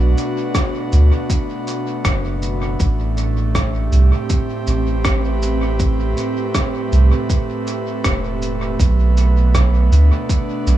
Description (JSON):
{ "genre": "ambient dub", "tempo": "80 BPM", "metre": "4/4", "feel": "swing 59% on 16ths", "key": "A dorian", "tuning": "A4 = 439 Hz", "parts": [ { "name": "airy breathy pad", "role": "sustained chords", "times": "0.0-10.8 s", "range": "A2 to B4", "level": "-22 LUFS", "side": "right 1 dB", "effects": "chorus" }, { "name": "soft dub sub bass", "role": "bass", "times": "0.0-10.8 s", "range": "E1 to D2", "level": "-15 LUFS", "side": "right 1 dB", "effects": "none" }, { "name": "electronic shaker and rim click", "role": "drums", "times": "0.2-10.8 s", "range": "none", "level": "-26 LUFS", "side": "equal", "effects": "dub echo" }, { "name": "electronic kick drum", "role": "drums", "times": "0.5-10.5 s", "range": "none", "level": "-20 LUFS", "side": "equal", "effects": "overdrive" } ], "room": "digital ambience", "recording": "echo-heavy mix", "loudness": "-15 LUFS", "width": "side -13 dB against mid", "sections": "0.0-10.8 A section", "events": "none", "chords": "0.0 Bm7; 2.8 Am7; 8.8 Bm7", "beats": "0.55 1.30 2.05 | 2.80 3.55 4.30 5.05 | 5.80 6.55 7.30 8.05 | 8.80 9.55 10.30" }